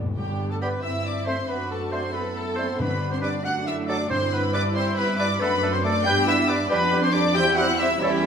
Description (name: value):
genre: quick classical-period movement for symphony orchestra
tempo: 92 BPM (dotted quarters)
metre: 6/8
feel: rubato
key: G major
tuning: A4 = 443 Hz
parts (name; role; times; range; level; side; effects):
- dark studio viola section; accompaniment; 0.0-8.3 s; G3 to E4; -30 LUFS; right 1 dB; none
- mellow bassoon; accompaniment; 0.0-8.3 s; F#3 to B3; -33 LUFS; right 2 dB; none
- warm studio cello section; bass; 0.0-8.3 s; D4 to A4; -31 LUFS; right 3 dB; none
- warm studio double bass section; bass; 0.0-8.3 s; E2 to G2; -30 LUFS; right 3 dB; none
- timpani; percussion; 0.0-4.7 s; G2; -33 LUFS; left 2 dB; none
- dark studio violin section; melody; 0.2-8.3 s; E5 to G6; -29 LUFS; left 3 dB; none
- mellow clarinet; second line; 0.2-8.3 s; E4 to G5; -31 LUFS; left 2 dB; none
- warm symphonic violin section; second line; 0.2-8.3 s; E4 to G5; -32 LUFS; left 2 dB; none
- dark French horn section; sustained chords; 0.2-8.3 s; E3 to G4; -30 LUFS; left 3 dB; none
- mellow trumpet; stabs; 0.2-8.3 s; E4 to G5; -29 LUFS; right 2 dB; none
- clear oboe; second line; 0.6-8.1 s; G4 to C5; -33 LUFS; right 1 dB; none
- silver concert flute; second line; 0.6-8.3 s; C5 to E5; -35 LUFS; left 2 dB; none
room: wet recital hall reverb, RT60 1.3 s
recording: minimal, uncompressed stereo recording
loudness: -21 LUFS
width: side -7 dB against mid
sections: 0.2-8.3 A section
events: timpani fill 0.0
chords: 0.2 G; 0.8 Am7/G; 1.5 D7/F#; 2.8 G; 3.4 D/F#; 4.1 G; 5.4 D/F#; 6.1 G; 6.7 G7/F; 7.4 C/E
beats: | 0.17 0.84 | 1.49 2.14 | 2.79 3.45 | 4.11 4.76 | 5.41 6.06 | 6.70 7.36 | 8.01